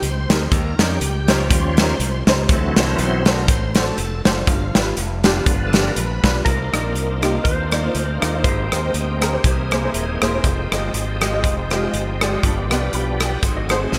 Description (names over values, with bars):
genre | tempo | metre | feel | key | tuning
uptempo gospel | 121 BPM | 4/4 | swing 56% on 8ths | C minor | A4 = 438 Hz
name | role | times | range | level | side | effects
bright tonewheel organ | sustained chords | 0.0-14.0 s | D3 to C5 | -28 LUFS | equal | slow rotary speaker, overdrive, chorus vibrato
modern bright fingered electric bass | bass | 0.0-14.0 s | D#1 to F2 | -25 LUFS | equal | none
natural country drum kit | drums | 0.0-14.0 s | hi-hat, kick drum, rim click, snare drum | -22 LUFS | equal | none
clear upright piano | accompaniment | 0.3-14.0 s | G2 to B5 | -27 LUFS | equal | ensemble chorus
clean lap steel guitar | melody | 6.4-10.2 s | Bb4 to C5 | -29 LUFS | equal | analog chorus, digital delay
mellow electric guitar | second line | 13.6-14.0 s | C4 to Eb5 | -30 LUFS | equal | subtle chorus
room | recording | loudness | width
moderate lush hall reverb, RT60 2.2 s | bright 1980s-style digital production | -19 LUFS | mono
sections
0.0-6.5 A section; 6.5-14.0 B section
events
tonewheel organ solo 0.0-6.5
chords
0.0 Cm7; 0.5 Eb7; 2.5 D7; 4.5 G7; 6.5 Cm11; 8.4 Abmaj9; 9.4 C7alt; 10.4 Fm9; 12.4 G7; 13.4 Ab7b9